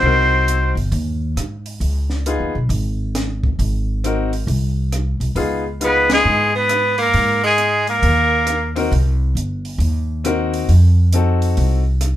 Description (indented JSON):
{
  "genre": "jazz, small-group swing and bop",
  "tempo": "135 BPM",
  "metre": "4/4",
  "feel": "swing 65% on 8ths",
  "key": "Ab mixolydian",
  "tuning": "A4 = 440 Hz",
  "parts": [
    { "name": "trumpet with straight mute", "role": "melody", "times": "0.0-0.7, 5.9-8.7 s", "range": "Ab4 to C5", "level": "-16 LUFS", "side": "left 1 dB", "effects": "none" },
    { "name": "bright tenor saxophone", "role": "second line", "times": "0.0-0.7, 5.8-8.7 s", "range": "Ab3 to C4", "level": "-20 LUFS", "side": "right 2 dB", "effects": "none" },
    { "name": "bright upright piano", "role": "accompaniment", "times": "0.0-11.8 s", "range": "Cb4 to Bb4", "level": "-22 LUFS", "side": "left 4 dB", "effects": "none" },
    { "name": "upright bass", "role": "bass", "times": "0.0-12.2 s", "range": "G1 to Ab2", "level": "-18 LUFS", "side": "equal", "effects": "none" },
    { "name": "compact cocktail drum kit", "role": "drums", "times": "0.5-12.1 s", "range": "hi-hat, kick drum, ride cymbal, rim click, snare drum", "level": "-27 LUFS", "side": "equal", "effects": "none" }
  ],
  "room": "moderate studio ambience, RT60 0.5 s",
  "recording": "band playing live in one room",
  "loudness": "-15 LUFS",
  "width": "side -13 dB against mid",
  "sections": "0.0-12.2 A section",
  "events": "band accent 6.0",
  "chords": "0.0 Ab9; 1.8 Db9; 3.6 Ab9; 5.4 Db9; 7.1 Ab9; 10.7 F7b9"
}